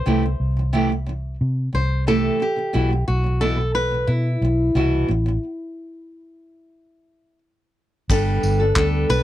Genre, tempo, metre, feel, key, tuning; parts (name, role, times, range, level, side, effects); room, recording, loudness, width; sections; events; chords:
acoustic pop; 90 BPM; 4/4; straight; A4 = 440 Hz
flamenco guitar; melody; 0.0-9.2 s; E4 to C5; -24 LUFS; left 1 dB
nylon-string guitar; accompaniment; 0.0-9.2 s; B2 to A4; -23 LUFS; right 1 dB
vintage muted fingered electric bass; bass; 0.1-9.2 s; G1 to C3; -21 LUFS; equal
vintage brush drum kit; drums; 8.1-9.2 s; crash cymbal, handclaps, kick drum, tambourine; -23 LUFS; equal
little or no reverb; dry, close 1970s-style studio recording; -18 LUFS; side -13 dB against mid
0.0-8.1 A section; 8.1-9.2 B section
stop 5.4-8.1
0.0 Am7; 2.7 Bsus4; 8.1 Gadd9